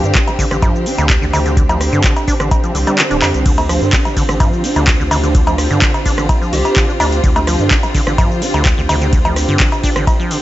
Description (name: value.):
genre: acid house.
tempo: 127 BPM.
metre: 4/4.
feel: straight.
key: D minor.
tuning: A4 = 440 Hz.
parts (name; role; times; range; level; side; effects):
clear studio string section; sustained chords; 0.0-10.4 s; D3 to G4; -23 LUFS; left 1 dB; sidechain pumping.
deep acid bass; riff; 0.0-10.4 s; D3 to D4; -21 LUFS; equal; tube saturation, tape echo.
saturated sub bass; bass; 0.0-10.1 s; D1 to G2; -18 LUFS; equal; sidechain pumping.
electro analog drum machine; drums; 0.0-10.4 s; cabasa, cowbell, crash cymbal, handclaps, hi-hat, ride cymbal, rim click; -18 LUFS; equal; overdrive.
airy breathy pad; texture; 0.0-10.4 s; D4 to G5; -22 LUFS; right 2 dB; chorus, sidechain pumping.
electronic kick drum; drums; 0.2-10.2 s; none; -15 LUFS; equal; overdrive.
plucky unison lead; melody; 6.5-6.9 s; G4; -23 LUFS; equal; cassette tape, tape echo.
room: light reverb.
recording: nothing above 7.9 kHz.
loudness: -11 LUFS.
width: side -14 dB against mid.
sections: 0.0-10.4 A section.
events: kick drops out 3.0-3.5; drum fill 3.2.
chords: 0.0 Dm7.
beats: 0.15 0.62 1.10 | 1.57 2.04 2.51 2.99 | 3.46 3.93 4.40 4.88 | 5.35 5.82 6.29 6.76 | 7.24 7.71 8.18 8.65 | 9.13 9.60 10.07.